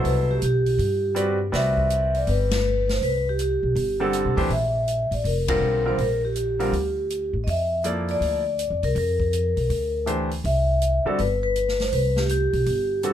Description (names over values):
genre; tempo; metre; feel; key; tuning
modal jazz; 162 BPM; 4/4; swing 65% on 8ths; unclear; A4 = 440 Hz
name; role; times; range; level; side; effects
vibraphone with medium mallets; melody; 0.0-13.1 s; G4 to E5; -23 LUFS; left 1 dB; none
clear concert grand piano; accompaniment; 0.0-13.1 s; B2 to F#5; -26 LUFS; equal; none
upright bass; bass; 0.0-13.1 s; F1 to G2; -25 LUFS; equal; none
open jazz drum kit; drums; 0.0-13.1 s; hi-hat, kick drum, ride cymbal, snare drum; -33 LUFS; left 1 dB; none
room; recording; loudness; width
little or no reverb; close, detailed microphones; -20 LUFS; side -10 dB against mid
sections
0.0-13.1 A section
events
band accent 2.5, 5.4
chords
0.0 Cmaj7sus2; 4.5 Bbmaj9; 10.4 Cmaj7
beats
| 0.04 0.41 0.79 1.16 | 1.53 1.90 2.27 2.64 | 3.01 3.38 3.76 4.13 | 4.50 4.87 5.24 5.61 | 5.99 6.36 6.73 7.10 | 7.47 7.84 8.21 8.59 | 8.96 9.33 9.70 10.07 | 10.44 10.81 11.18 11.55 | 11.92 12.29 12.66 13.04